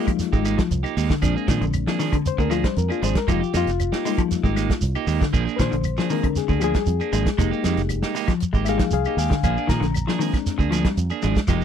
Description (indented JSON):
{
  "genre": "afrobeat",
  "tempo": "117 BPM",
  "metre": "4/4",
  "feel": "straight",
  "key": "unclear",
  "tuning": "A4 = 440 Hz",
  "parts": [
    { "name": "bright reed electric piano", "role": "accompaniment", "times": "0.0-11.2 s", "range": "G3 to Bb5", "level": "-26 LUFS", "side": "left 16 dB", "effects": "none" },
    { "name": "electric guitar at the edge of break-up", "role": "arpeggios", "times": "0.0-11.6 s", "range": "D3 to Ab3", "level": "-26 LUFS", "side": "left 6 dB", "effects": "slapback echo" },
    { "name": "electric guitar at the edge of break-up", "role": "stabs", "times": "0.0-11.6 s", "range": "F3 to Ab4", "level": "-26 LUFS", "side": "right 14 dB", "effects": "none" },
    { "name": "warm soul drum kit", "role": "drums", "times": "0.1-11.6 s", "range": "hi-hat, kick drum, snare drum", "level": "-24 LUFS", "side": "right 1 dB", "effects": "none" },
    { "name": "claves", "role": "percussion", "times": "0.1-11.6 s", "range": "none", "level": "-36 LUFS", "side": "left 27 dB", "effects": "none" },
    { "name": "shekere", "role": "percussion", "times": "0.1-11.6 s", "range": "none", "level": "-30 LUFS", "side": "right 3 dB", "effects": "none" },
    { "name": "fingered electric bass", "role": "bass", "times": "0.3-11.6 s", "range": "F1 to Bb2", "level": "-24 LUFS", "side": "right 1 dB", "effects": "none" }
  ],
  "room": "little or no reverb",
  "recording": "none",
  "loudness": "-19 LUFS",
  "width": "side -8 dB against mid",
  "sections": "0.0-11.6 A section",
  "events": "reed electric piano solo 0.0-11.6",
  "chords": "0.0 Fm11; 1.2 Bb7; 3.3 Fm11; 5.3 Bb7; 7.4 Fm11; 9.4 Bb7"
}